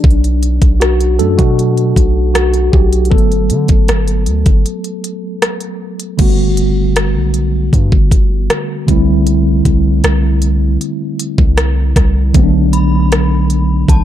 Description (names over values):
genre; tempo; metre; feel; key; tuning
contemporary R&B; 78 BPM; 4/4; straight; unclear; A4 = 440 Hz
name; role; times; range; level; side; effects
mellow tine electric piano; accompaniment; 0.0-14.0 s; D3 to A4; -16 LUFS; equal; medium stereo tremolo
long sustained 808-style bass; bass; 0.0-14.0 s; G1 to D3; -14 LUFS; equal; none
trap drum kit; drums; 0.0-14.0 s; crash cymbal, hi-hat, kick drum, rim click; -13 LUFS; equal; overdrive
synth chime; texture; 12.7-14.0 s; A5 to B5; -24 LUFS; left 2 dB; ensemble chorus, tape echo
room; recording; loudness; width
little or no reverb; dark, warm production; -10 LUFS; side -11 dB against mid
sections
0.0-6.2 A section; 6.2-14.0 B section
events
tine electric piano solo 0.0-6.2; break 4.7-6.2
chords
0.0 Bm7; 3.1 Gmaj9; 8.9 C69; 12.3 Bm7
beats
| 0.04 0.81 1.58 2.35 | 3.12 3.88 4.65 5.42 | 6.19 6.96 7.73 8.50 | 9.27 10.04 10.81 11.58 | 12.35 13.12 13.88